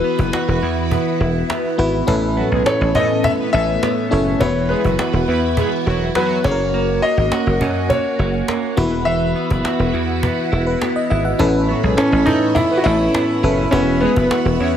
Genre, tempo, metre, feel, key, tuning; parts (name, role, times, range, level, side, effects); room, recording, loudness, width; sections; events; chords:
1980s-style pop; 103 BPM; 4/4; straight; A4 = 440 Hz
warm concert grand piano; melody; 0.0-14.8 s; B3 to E5; -20 LUFS; left 1 dB
FM electric piano; accompaniment; 0.0-14.8 s; A2 to F#5; -21 LUFS; left 2 dB; chorus
phased string machine; sustained chords; 0.0-14.8 s; E3 to E6; -25 LUFS; equal; ensemble chorus, phaser
direct-recorded clean electric guitar; riff; 0.0-14.8 s; E3 to A4; -25 LUFS; right 6 dB; wide subtle chorus, digital delay
cajon; drums; 0.0-14.8 s; -25 LUFS; equal
dry thumbed slap bass; bass; 0.2-14.8 s; E1 to A2; -20 LUFS; equal
analog synth brass; stabs; 2.4-6.4, 11.7-14.7 s; F#3 to C#5; -25 LUFS; right 2 dB; chorus
light reverb, digital ambience; -15 LUFS; side -9 dB against mid
0.0-11.4 A section; 11.4-14.8 A section
0.0 Esus2; 2.1 Aadd9; 4.4 Esus2; 6.4 F#; 8.8 Esus2; 11.4 Aadd9; 13.7 Esus2